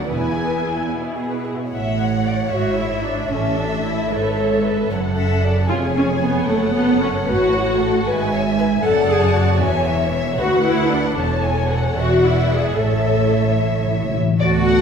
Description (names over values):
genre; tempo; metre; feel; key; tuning
quick classical-period movement for symphony orchestra; 76 BPM (dotted quarters); 6/8; straight; A major; A4 = 440 Hz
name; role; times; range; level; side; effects
dark studio violin section; second line; 0.0-14.8 s; B3 to G#5; -23 LUFS; left 2 dB; none
warm studio viola section; accompaniment; 0.0-14.8 s; A3 to A4; -21 LUFS; left 1 dB; none
warm studio violin section; melody; 0.1-14.8 s; C#5 to A5; -28 LUFS; left 2 dB; none
rich studio cello section; bass; 0.1-14.8 s; D2 to F#4; -23 LUFS; right 2 dB; none
rich studio double bass section; bass; 0.1-14.8 s; E1 to D2; -24 LUFS; right 3 dB; none
timpani; percussion; 3.3-4.1, 12.8-14.4 s; A2; -22 LUFS; left 1 dB; none
mellow French horn section; sustained chords; 14.4-14.8 s; A3 to F#4; -19 LUFS; left 1 dB; none
room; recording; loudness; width
wet scoring stage reverb, RT60 1.5 s; heard from further back in the room; -16 LUFS; side -6 dB against mid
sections
0.0-1.7 A section; 1.7-14.4 B section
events
timpani fill 12.8-14.4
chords
0.1 E; 1.7 A; 2.5 E/G#; 3.3 A; 4.9 F#m; 5.7 C#/E#; 6.5 F#m; 8.1 E/G#; 8.8 D/F#; 9.6 C#m/E; 10.4 Bm/D; 11.2 A/E; 12.0 E9; 12.8 A